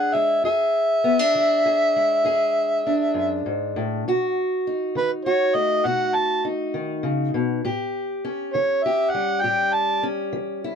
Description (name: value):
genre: acoustic country blues, solo or duo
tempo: 67 BPM (dotted quarters)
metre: 12/8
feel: straight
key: unclear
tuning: A4 = 440 Hz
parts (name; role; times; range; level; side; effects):
- overdriven harmonica; melody; 0.0-10.0 s; B4 to A5; -19 LUFS; equal; none
- fingerpicked steel-string acoustic guitar; accompaniment; 0.0-10.8 s; E2 to G#4; -24 LUFS; left 1 dB; none
room: moderate booth ambience, RT60 0.2 s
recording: dark, warm production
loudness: -20 LUFS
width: side -7 dB against mid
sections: 0.0-10.8 A section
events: none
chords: 0.0 E7; 4.0 B7; 7.6 A7